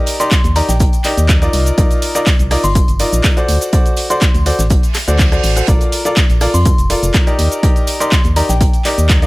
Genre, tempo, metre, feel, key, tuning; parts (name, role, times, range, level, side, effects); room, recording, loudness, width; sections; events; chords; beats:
piano house; 123 BPM; 4/4; straight; A4 = 439 Hz
clear grand piano; riff; 0.0-9.3 s; Eb4 to F#5; -18 LUFS; equal; sidechain pumping, digital delay
punchy analog drum machine; drums; 0.1-9.3 s; handclaps, hi-hat, rim click, shaker; -20 LUFS; equal
warm soul drum kit; drums; 0.1-9.2 s; hi-hat, snare drum; -30 LUFS; right 3 dB
tambourine; percussion; 0.1-9.3 s; -30 LUFS; right 6 dB
soft synth bell; melody; 0.2-8.8 s; G5 to C6; -22 LUFS; left 1 dB; chorus, digital delay
electronic kick drum; drums; 0.3-9.2 s; -13 LUFS; equal
organ-like FM bass; bass; 0.4-9.3 s; F1 to F2; -15 LUFS; equal; tube saturation, sidechain pumping
reverse cymbal; sound effects; 4.9-5.7 s; -25 LUFS; right 6 dB
studio ambience; -11 LUFS; side -21 dB against mid
0.0-9.3 A section
reverse cymbal 4.9-5.7
0.0 Ebmaj7; 1.5 Cm11; 3.5 D7; 5.7 Bbmaj7; 7.4 Ebmaj7
0.31 0.80 1.29 | 1.78 2.27 2.75 3.24 | 3.73 4.22 4.70 5.19 | 5.68 6.17 6.66 7.14 | 7.63 8.12 8.61 9.09